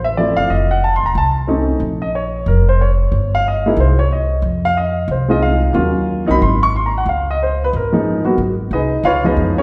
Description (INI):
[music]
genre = jazz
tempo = 183 BPM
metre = 4/4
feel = swing 64% on 8ths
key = Bb minor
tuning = A4 = 443 Hz
[part]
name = warm baby grand piano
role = melody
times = 0.0-9.6 s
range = F3 to Db6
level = -18 LUFS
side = equal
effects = none
[part]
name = upright bass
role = bass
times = 0.0-9.6 s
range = E1 to F2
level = -20 LUFS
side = equal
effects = none
[sound]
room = wet recital hall reverb, RT60 1.4 s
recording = recorded in a church or concert hall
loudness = -16 LUFS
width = mono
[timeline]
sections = 0.0-1.8 A section; 1.8-9.6 B section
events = none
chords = 0.5 F7b13; 1.8 Bbm; 3.1 F7sus2/G (rootless); 3.8 Cm; 4.4 Fm7; 5.7 Ebm9; 6.4 Ab; 7.1 Db69; 8.4 Abm; 9.0 Db9